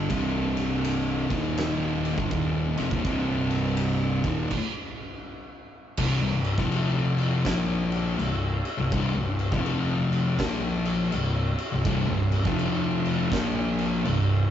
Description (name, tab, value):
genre	stoner and doom metal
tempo	82 BPM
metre	4/4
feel	swing 63% on 8ths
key	C minor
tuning	A4 = 440 Hz
part	thick fuzz guitar	riff	0.0-14.4 s	C2 to Bb3	-25 LUFS	left 3 dB	distortion
part	thick fuzz guitar	riff	0.0-4.5, 11.8-14.4 s	C2 to Bb3	-28 LUFS	right 5 dB	distortion
part	fuzz fingered electric bass	bass	0.0-14.5 s	C1 to Bb1	-34 LUFS	right 1 dB	overdrive
part	oversized low-tuned drum kit	drums	0.1-14.3 s	crash cymbal, kick drum, ride cymbal, snare drum	-30 LUFS	equal	none
room	wet studio reverb, RT60 0.5 s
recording	rough rehearsal-room recording, nothing above 7.7 kHz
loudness	-23 LUFS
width	side -10 dB against mid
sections	0.0-6.0 A section; 6.0-14.5 B section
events	stop 4.5-6.0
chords	0.1 C5; 1.2 Eb5; 2.1 Cm; 4.2 Eb5; 5.1 N.C.; 6.0 C5; 6.5 F5; 7.5 Bb5; 8.2 C5; 9.5 F5; 10.4 Bb5; 11.1 C5; 12.4 F5; 13.3 Bb5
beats	| 0.11 0.84 1.58 2.31 | 3.05 3.79 4.52 5.26 | 5.99 6.72 7.46 8.19 | 8.92 9.66 10.39 11.12 | 11.85 12.59 13.32 14.05